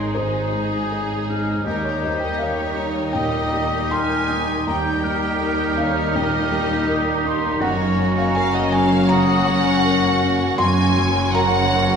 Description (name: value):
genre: cinematic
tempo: 81 BPM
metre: 4/4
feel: rubato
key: unclear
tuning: A4 = 440 Hz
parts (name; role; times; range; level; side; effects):
- warm studio violin section; melody; 0.0-12.0 s; Ab4 to Ab5; -26 LUFS; left 2 dB; none
- clear clarinet; second line; 0.0-12.0 s; Db4 to Eb4; -31 LUFS; left 1 dB; none
- silver concert flute; second line; 0.0-12.0 s; Bb5 to G6; -28 LUFS; left 2 dB; none
- warm oboe; second line; 0.0-12.0 s; Gb4 to Ab4; -28 LUFS; right 4 dB; none
- warm symphonic violin section; second line; 0.0-12.0 s; Db4 to Bb4; -29 LUFS; left 2 dB; none
- felt-muted upright piano; accompaniment; 0.0-12.0 s; Eb2 to C6; -24 LUFS; equal; none
- rich symphonic viola section; accompaniment; 0.0-12.0 s; Gb3 to Eb4; -29 LUFS; right 2 dB; none
- dark French horn section; sustained chords; 0.0-12.0 s; Gb3 to Eb4; -27 LUFS; left 3 dB; none
- dark symphonic cello section; bass; 0.0-12.0 s; Eb2 to Ab2; -27 LUFS; right 2 dB; none
- warm symphonic double bass section; bass; 0.0-12.0 s; Gb1 to Eb2; -28 LUFS; right 3 dB; none
room: wet recital hall reverb, RT60 1.6 s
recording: recorded in a church or concert hall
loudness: -17 LUFS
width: side -6 dB against mid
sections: 0.0-12.0 A section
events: none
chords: 0.0 Ab; 1.7 Eb; 7.6 Gb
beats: 0.15 0.91 | 1.66 2.40 3.14 3.92 | 4.67 5.41 6.16 6.89 | 7.63 8.36 9.11 9.85 | 10.59 11.35